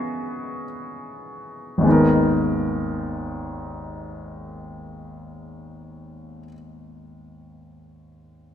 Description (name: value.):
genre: pop.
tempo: free time.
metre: none.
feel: none.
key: G# minor.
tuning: A4 = 443 Hz.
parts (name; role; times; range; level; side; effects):
clear baby grand piano; accompaniment; 0.0-8.5 s; G#1 to A#4; -23 LUFS; equal; none.
room: moderate lush hall reverb, RT60 2.6 s.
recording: rough home demo mix.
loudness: -20 LUFS.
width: side -10 dB against mid.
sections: 0.0-1.9 A section; 1.9-6.5 B section.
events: slowing down 0.0-1.9; grand piano solo 0.0-1.9.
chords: 0.0 C#madd9; 1.9 G#madd9.